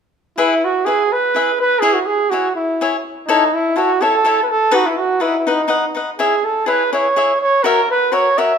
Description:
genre	mexican folk, mariachi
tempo	124 BPM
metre	3/4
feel	straight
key	E major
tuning	A4 = 440 Hz
part	mellow trumpet	melody	0.4-8.6 s	D#4 to E5	-15 LUFS	right 2 dB	none
part	cavaquinho	accompaniment	0.4-8.5 s	D#4 to F#5	-19 LUFS	left 5 dB	none
room	moderate recital hall reverb, RT60 1.8 s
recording	minimal, uncompressed stereo recording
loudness	-14 LUFS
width	side -7 dB against mid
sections	0.4-8.6 A section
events	none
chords	0.4 E; 1.8 C#m; 3.3 A; 4.7 B; 6.2 C#m; 7.6 F#7

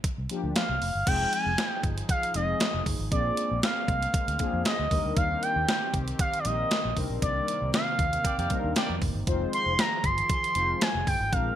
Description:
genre	early-eighties boogie funk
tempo	117 BPM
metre	4/4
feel	straight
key	unclear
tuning	A4 = 440 Hz
part	clean 12-bit digital drum machine	drums	0.0-11.5 s	crash cymbal, hi-hat, kick drum, snare drum	-28 LUFS	equal	gated reverb
part	vintage muted fingered electric bass	bass	0.2-11.5 s	F1 to F2	-31 LUFS	equal	none
part	mellow synth brass	accompaniment	0.3-11.6 s	F3 to C5	-34 LUFS	left 4 dB	chorus
part	expressive portamento lead	melody	0.6-11.6 s	D5 to C6	-28 LUFS	equal	chorus
part	warm analog pad	sustained chords	1.1-11.6 s	C3 to Ab4	-38 LUFS	right 1 dB	chorus
part	bright horn section	second line	8.2-8.9 s	Bb3 to D5	-35 LUFS	equal	none
room	light reverb, digital ambience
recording	bright 1980s-style digital production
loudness	-24 LUFS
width	side -11 dB against mid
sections	0.0-1.1 A section; 1.1-11.6 B section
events	band accent 7.2-9.3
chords	0.0 Gm7; 1.1 Fm7; 3.1 Bb9; 4.9 Ebmaj7; 7.0 Cm9; 9.3 Fm7

